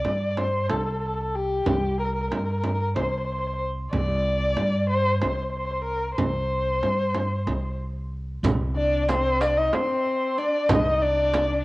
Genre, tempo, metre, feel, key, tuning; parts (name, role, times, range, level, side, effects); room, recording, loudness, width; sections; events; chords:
Turkish makam ensemble; 186 BPM (eighths); 7/8; straight; C makam nikriz; A4 = 441 Hz
dark erhu; melody; 0.0-11.6 s; G4 to Eb5; -24 LUFS; left 1 dB; cassette tape
upright bass; bass; 0.0-11.6 s; C2 to G2; -27 LUFS; equal
frame drum; percussion; 0.0-11.5 s; -28 LUFS; right 2 dB
darbuka; percussion; 8.4-11.5 s; -31 LUFS; right 2 dB
riq; percussion; 8.4-11.5 s; -36 LUFS; right 2 dB
warm kamancheh; second line; 8.8-11.6 s; C4 to Eb4+20c; -30 LUFS; left 2 dB
moderate spring reverb, RT60 1.6 s, small room ambience; home recording on cassette; -22 LUFS; side -20 dB against mid
0.0-8.4 A section; 8.4-11.6 B section